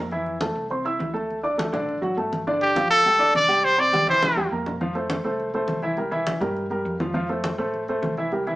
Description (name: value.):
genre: latin, salsa.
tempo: 205 BPM.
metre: 4/4.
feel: straight.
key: F major.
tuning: A4 = 440 Hz.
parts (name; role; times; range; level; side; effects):
warm upright piano; accompaniment; 0.0-8.6 s; D3 to E6; -25 LUFS; equal; none.
hollow-body short-scale fingered electric bass; bass; 0.0-8.6 s; G1 to A2; -37 LUFS; equal; none.
congas; percussion; 0.1-8.6 s; none; -31 LUFS; equal; none.
bright trumpet; melody; 2.6-4.5 s; G4 to D5; -17 LUFS; equal; none.
room: wet studio reverb, RT60 0.8 s.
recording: band playing live in one room, small speaker sound.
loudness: -20 LUFS.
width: side -18 dB against mid.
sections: 0.0-4.8 A section; 4.8-8.6 B section.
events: drum fill 3.9-4.8.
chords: 0.1 Fmaj7; 1.3 D; 2.5 G5; 3.6 C5; 4.2 C7; 4.8 F; 6.0 C7; 7.1 F.